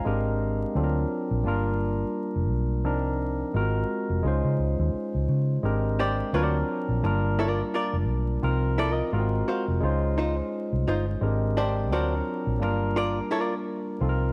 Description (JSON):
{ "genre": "R&B", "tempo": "86 BPM", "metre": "4/4", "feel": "swing 59% on 16ths", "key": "unclear", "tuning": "A4 = 440 Hz", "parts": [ { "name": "barky tine electric piano", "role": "accompaniment", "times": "0.0-14.3 s", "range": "F3 to F5", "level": "-30 LUFS", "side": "equal", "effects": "overdrive" }, { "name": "vintage muted fingered electric bass", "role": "bass", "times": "0.1-14.3 s", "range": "F1 to Db3", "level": "-28 LUFS", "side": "equal", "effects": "none" }, { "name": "archtop guitar, miked and amplified", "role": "second line", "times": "6.0-13.5 s", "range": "D4 to F5", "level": "-32 LUFS", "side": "equal", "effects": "none" } ], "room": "moderate echo chamber reverb, RT60 1.7 s", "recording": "vinyl crackle", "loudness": "-26 LUFS", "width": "mono", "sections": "0.0-14.3 A section", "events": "none", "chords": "0.0 Abmaj9#11; 0.7 D7alt; 1.4 Gm7; 2.8 Cm11; 3.5 Ab13; 4.2 Dbmaj9; 5.6 Abmaj9#11; 6.3 D7alt; 7.0 Gm7; 8.4 Cm7; 9.1 Ab13; 9.8 Dbmaj9; 11.2 Abmaj9#11; 11.9 D7alt; 12.6 Gm7", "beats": "| 0.04 0.74 1.44 2.14 | 2.83 3.53 4.23 4.93 | 5.62 6.32 7.02 7.72 | 8.41 9.11 9.81 10.51 | 11.21 11.90 12.60 13.30 | 14.00" }